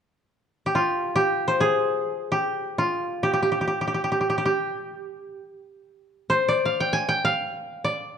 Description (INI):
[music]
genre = japanese traditional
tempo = free time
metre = none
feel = none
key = G in sen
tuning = A4 = 440 Hz
[part]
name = koto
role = melody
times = 0.7-8.2 s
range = F4 to Ab5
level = -22 LUFS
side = equal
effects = none
[sound]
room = moderate recital hall reverb, RT60 1.7 s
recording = dark, warm production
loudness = -22 LUFS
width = side -7 dB against mid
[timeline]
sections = 0.0-8.2 A section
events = none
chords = none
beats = free time